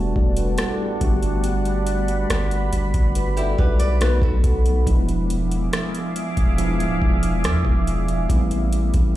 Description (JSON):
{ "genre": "contemporary R&B", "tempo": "70 BPM", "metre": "4/4", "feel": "straight", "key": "E minor", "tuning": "A4 = 440 Hz", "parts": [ { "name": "mellow tine electric piano", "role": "accompaniment", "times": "0.0-9.2 s", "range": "F3 to D5", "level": "-25 LUFS", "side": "equal", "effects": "medium stereo tremolo" }, { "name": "deep dark ambient pad", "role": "sustained chords", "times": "0.0-9.2 s", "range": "G3 to D6", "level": "-28 LUFS", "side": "right 2 dB", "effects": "chorus, built-in reverb" }, { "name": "long sustained 808-style bass", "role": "bass", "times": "0.0-9.1 s", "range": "D1 to E2", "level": "-22 LUFS", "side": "equal", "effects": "none" }, { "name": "booming analog drum machine", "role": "drums", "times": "0.2-9.1 s", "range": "hi-hat, kick drum, rim click", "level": "-21 LUFS", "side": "equal", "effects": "overdrive" }, { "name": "nylon-string guitar", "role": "arpeggios", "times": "3.4-4.8 s", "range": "E4 to D5", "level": "-27 LUFS", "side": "left 2 dB", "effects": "tape echo" } ], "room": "digital ambience", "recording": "played on a big sound system in a bare room, large studio reverb", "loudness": "-18 LUFS", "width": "side -14 dB against mid", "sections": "0.0-9.2 A section", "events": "none", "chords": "0.0 Em11; 1.0 Gmaj7; 4.0 B7; 4.9 E7b9; 8.3 Am9" }